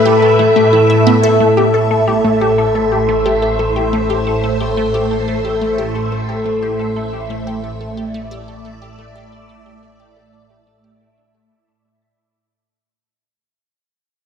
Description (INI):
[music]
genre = ambient, sequencer-driven space music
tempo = 89 BPM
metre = 4/4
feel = straight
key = A minor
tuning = A4 = 440 Hz
[part]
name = phased string machine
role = sustained chords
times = 0.0-12.2 s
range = A2 to E5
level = -16 LUFS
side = right 1 dB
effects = ensemble chorus, phaser
[part]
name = concert harp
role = arpeggios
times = 0.0-9.8 s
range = A2 to A4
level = -16 LUFS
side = left 2 dB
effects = auto-pan, tape echo
[part]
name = resonant blip pluck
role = riff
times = 0.1-12.1 s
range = A3 to E5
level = -20 LUFS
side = equal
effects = phaser, tape echo
[part]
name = fat analog bass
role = bass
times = 1.4-12.2 s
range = A1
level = -28 LUFS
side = equal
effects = none
[sound]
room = wet concert hall reverb, RT60 1.9 s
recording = none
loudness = -12 LUFS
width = side -7 dB against mid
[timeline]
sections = 0.0-1.4 A section; 1.4-12.2 B section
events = fade-out on synth arpeggio sound 1.4-12.2; fade-out on analog synth bass 1.4-12.2; fade-out 1.4-12.2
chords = 0.0 Asus2; 1.4 Am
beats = 0.05 0.73 | 1.40 2.08 2.75 3.42 | 4.10 4.77 5.45 6.12 | 6.80 7.47 8.14 8.82 | 9.49 10.17 10.84 11.52